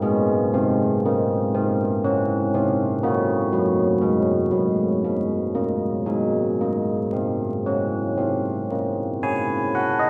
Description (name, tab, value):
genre	classical, tune for church bells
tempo	59 BPM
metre	3/4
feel	straight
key	unclear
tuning	A4 = 439 Hz
part	carillon bells	solo	0.0-10.1 s	Gb3 to Ab5	-22 LUFS	equal	none
room	wet concert hall reverb, RT60 1.7 s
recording	heard from further back in the room, vinyl crackle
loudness	-22 LUFS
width	mono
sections	0.0-9.2 A section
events	none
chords	0.0 Ab; 3.0 Gb; 6.1 Ab; 9.2 Db5